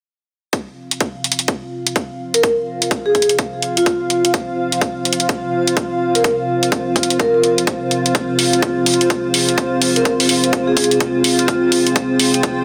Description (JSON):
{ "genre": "bass house", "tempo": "126 BPM", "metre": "4/4", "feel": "swing 61% on 16ths", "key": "F minor", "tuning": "A4 = 440 Hz", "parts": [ { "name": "dark analog pad", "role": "sustained chords", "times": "0.5-12.6 s", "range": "C4 to F5", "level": "-22 LUFS", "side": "equal", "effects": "lush chorus, sidechain pumping" }, { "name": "electronic hi-hat", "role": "drums", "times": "0.5-12.6 s", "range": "none", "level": "-20 LUFS", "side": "equal", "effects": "small room ambience" }, { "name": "electronic kick drum", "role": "drums", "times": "0.5-12.6 s", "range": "none", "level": "-22 LUFS", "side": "equal", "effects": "high-pass filter on kick, small room ambience" }, { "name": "granular cloud pad", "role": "texture", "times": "2.7-12.6 s", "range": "F4 to G5", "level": "-25 LUFS", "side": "equal", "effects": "built-in reverb, sidechain pumping" }, { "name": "vibraphone with medium mallets", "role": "melody", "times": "2.3-11.9 s", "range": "F4 to Bb4", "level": "-21 LUFS", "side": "equal", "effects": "digital delay" } ], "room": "moderate lush hall reverb, RT60 1.8 s", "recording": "dense, heavily limited modern master", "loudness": "-17 LUFS", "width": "mono", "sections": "0.5-12.6 A section", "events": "fade-in on ambient pad 0.5-12.6", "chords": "0.5 F5", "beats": "| 0.53 1.01 1.48 1.96 | 2.43 2.91 3.39 3.86 | 4.34 4.82 5.29 5.77 | 6.24 6.72 7.20 7.67 | 8.15 8.62 9.10 9.58 | 10.05 10.53 11.01 11.48 | 11.96 12.43" }